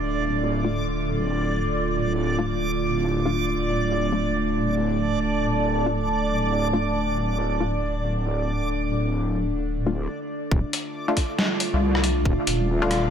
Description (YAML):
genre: deep dubstep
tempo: 138 BPM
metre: 4/4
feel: swing 60% on 16ths, half-time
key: D minor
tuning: A4 = 440 Hz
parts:
  - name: overtone-sweeping drone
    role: sustained chords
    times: 0.0-13.1 s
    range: D3 to F4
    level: -26 LUFS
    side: right 1 dB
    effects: chorus, built-in reverb
  - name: wobble bass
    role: bass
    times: 0.0-13.1 s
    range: D1 to C2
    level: -26 LUFS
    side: equal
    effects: chorus, tube saturation
  - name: backwards swelling texture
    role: texture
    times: 0.0-13.1 s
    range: D5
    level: -30 LUFS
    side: right 1 dB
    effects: built-in reverb
  - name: filtered dub chord stab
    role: stabs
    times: 0.6-13.1 s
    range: A3 to F4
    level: -30 LUFS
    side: left 3 dB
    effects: chorus, dub echo
  - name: electronic kick drum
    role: drums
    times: 10.5-12.4 s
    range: none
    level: -22 LUFS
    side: equal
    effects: overdrive
  - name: trip hop sampler-style drum kit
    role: drums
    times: 10.7-13.0 s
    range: hi-hat, rim click, snare drum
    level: -26 LUFS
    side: left 1 dB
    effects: low-pass filter on hats, low-pass filter on snare, low-pass filter on room
room: moderate lush hall reverb, RT60 1.5 s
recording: none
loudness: -22 LUFS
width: side -8 dB against mid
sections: 0.0-10.5 A section; 10.5-13.1 B section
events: break 10.1-10.5; drop 10.5-13.1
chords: 0.0 Dm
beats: | 0.08 0.52 0.95 1.39 | 1.82 2.25 2.69 3.12 | 3.56 3.99 4.43 4.86 | 5.30 5.73 6.17 6.60 | 7.04 7.47 7.91 8.34 | 8.78 9.21 9.65 10.08 | 10.52 10.95 11.38 11.82 | 12.26 12.69